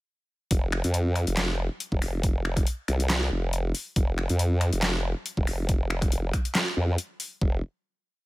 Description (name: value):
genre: heavy wobble dubstep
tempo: 139 BPM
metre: 4/4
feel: swing 54% on 16ths, half-time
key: unclear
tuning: A4 = 440 Hz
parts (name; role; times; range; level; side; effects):
- formant-sweep wobble bass; bass; 0.5-7.6 s; F1 to F2; -26 LUFS; equal; chorus, overdrive
- dubstep drum kit; drums; 0.5-7.3 s; finger snaps, handclaps, hi-hat, snare drum; -29 LUFS; equal; overdrive
- electronic kick drum; drums; 0.5-7.5 s; none; -25 LUFS; equal; overdrive
room: little or no reverb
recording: none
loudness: -24 LUFS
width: side -19 dB against mid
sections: 0.5-7.4 drop; 7.4-8.3 final note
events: drop 0.5-7.4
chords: none